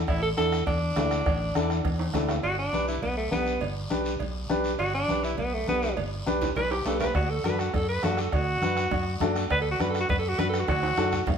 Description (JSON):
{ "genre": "latin, cumbia", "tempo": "204 BPM", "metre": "4/4", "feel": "straight", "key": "unclear", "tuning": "A4 = 440 Hz", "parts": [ { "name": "fingered electric bass", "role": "bass", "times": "0.0-11.4 s", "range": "G1 to F#2", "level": "-31 LUFS", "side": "equal", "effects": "none" }, { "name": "bright alto saxophone", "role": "melody", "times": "0.1-11.3 s", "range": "A3 to B4", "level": "-28 LUFS", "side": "right 1 dB", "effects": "none" }, { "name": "bombo", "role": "percussion", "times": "0.1-2.4, 7.1-11.4 s", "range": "none", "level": "-31 LUFS", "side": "equal", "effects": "none" }, { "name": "congas", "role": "percussion", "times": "0.1-11.3 s", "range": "none", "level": "-36 LUFS", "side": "right 1 dB", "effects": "none" }, { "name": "cowbell and timbales", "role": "percussion", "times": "0.1-11.4 s", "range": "none", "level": "-35 LUFS", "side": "right 4 dB", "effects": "none" }, { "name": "guiro", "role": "percussion", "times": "0.1-11.4 s", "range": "none", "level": "-41 LUFS", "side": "left 2 dB", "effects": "none" }, { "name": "warm upright piano", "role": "accompaniment", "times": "0.4-11.2 s", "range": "D4 to B4", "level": "-30 LUFS", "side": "left 2 dB", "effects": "none" } ], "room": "wet stone room reverb, RT60 1.1 s", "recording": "band playing live in one room", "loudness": "-24 LUFS", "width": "side -7 dB against mid", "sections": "0.0-2.4 A section; 2.4-11.4 B section", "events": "drum fill 2.0-2.4, 6.3-7.2, 10.7-11.4; alto saxophone solo 2.4-11.4", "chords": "0.0 Asus4; 2.4 G; 7.2 D", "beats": "| 0.08 0.38 0.67 0.96 | 1.26 1.55 1.85 2.14 | 2.44 2.73 3.03 3.32 | 3.62 3.91 4.21 4.50 | 4.79 5.09 5.38 5.68 | 5.97 6.27 6.56 6.86 | 7.15 7.45 7.74 8.03 | 8.33 8.62 8.92 9.21 | 9.51 9.80 10.09 10.39 | 10.68 10.98 11.27" }